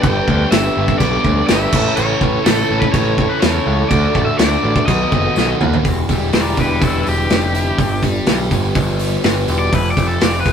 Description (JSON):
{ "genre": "indie rock", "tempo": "124 BPM", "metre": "4/4", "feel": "straight", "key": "G lydian", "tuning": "A4 = 439 Hz", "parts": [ { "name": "overdriven electric guitar", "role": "melody", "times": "0.0-10.5 s", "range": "E4 to G5", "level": "-21 LUFS", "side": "left 2 dB", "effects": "none" }, { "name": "percussive tonewheel organ", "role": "sustained chords", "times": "0.0-10.5 s", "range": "C3 to B4", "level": "-24 LUFS", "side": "equal", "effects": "slow rotary speaker, chorus vibrato" }, { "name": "overdriven electric guitar", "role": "riff", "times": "0.0-10.5 s", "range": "E2 to A4", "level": "-21 LUFS", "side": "right 1 dB", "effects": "none" }, { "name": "growling picked electric bass", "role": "bass", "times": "0.0-10.5 s", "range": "E1 to E2", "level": "-19 LUFS", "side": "equal", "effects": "overdrive" }, { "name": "loose indie drum kit", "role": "drums", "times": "0.0-10.5 s", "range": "crash cymbal, hi-hat, kick drum, snare drum, toms", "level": "-17 LUFS", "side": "equal", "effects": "none" }, { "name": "tambourine", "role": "percussion", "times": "0.5-5.5 s", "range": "none", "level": "-37 LUFS", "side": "left 5 dB", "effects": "none" } ], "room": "light reverb", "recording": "rough rehearsal-room recording", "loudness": "-13 LUFS", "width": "side -7 dB against mid", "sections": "0.0-5.8 A section; 5.8-10.5 B section", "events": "drum fill 5.4-5.8; overdriven electric guitar solo 5.8-10.5", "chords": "0.0 G; 1.7 A; 3.9 D; 4.9 B7; 5.8 Em7; 9.7 F", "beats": "| 0.04 0.52 1.00 1.49 | 1.97 2.46 2.94 3.42 | 3.91 4.39 4.88 5.36 | 5.85 6.33 6.82 7.30 | 7.79 8.27 8.76 9.25 | 9.73 10.22" }